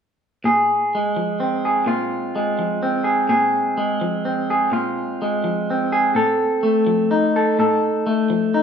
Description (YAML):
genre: folk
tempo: 42 BPM (dotted quarters)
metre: 6/8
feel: straight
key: unclear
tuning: A4 = 440 Hz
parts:
  - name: electric guitar through a small old amp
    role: accompaniment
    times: 0.4-8.6 s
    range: A2 to A4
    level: -17 LUFS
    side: equal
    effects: none
room: wet large studio reverb, RT60 1.4 s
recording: minimal, uncompressed stereo recording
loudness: -17 LUFS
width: side -7 dB against mid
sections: 0.4-8.6 A section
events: none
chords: 0.4 Bbsus2; 6.2 F7/A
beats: | 0.45 1.88 | 3.31 4.74 | 6.16 7.59